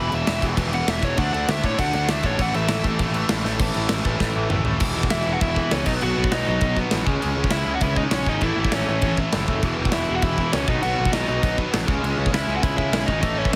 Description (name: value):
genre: punk rock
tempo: 199 BPM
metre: 4/4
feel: straight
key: E major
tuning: A4 = 441 Hz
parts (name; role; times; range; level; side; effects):
- biting lead guitar; melody; 0.0-2.8, 5.1-13.6 s; C#4 to B5; -28 LUFS; equal; overdrive
- distorted electric guitar; riff; 0.0-13.6 s; E2 to D4; -30 LUFS; equal; overdrive
- overdriven electric guitar; riff; 0.0-13.6 s; E2 to D4; -30 LUFS; equal; none
- fuzz picked electric bass; bass; 0.0-13.6 s; E1 to A2; -28 LUFS; equal; overdrive
- big rock drum kit; drums; 0.1-13.6 s; crash cymbal, kick drum, snare drum, toms; -27 LUFS; equal; none
room: light reverb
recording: heavily compressed radio sound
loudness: -22 LUFS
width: mono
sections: 0.0-3.6 A section; 3.6-4.8 B section; 4.8-13.6 C section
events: lead electric guitar solo 0.0-3.6; drum fill 3.5, 4.2-4.8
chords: 0.0 E5; 1.2 D5; 2.4 A5; 4.8 E5; 5.9 B; 7.1 C#m; 8.4 A; 9.6 E5; 10.7 B; 11.9 C#m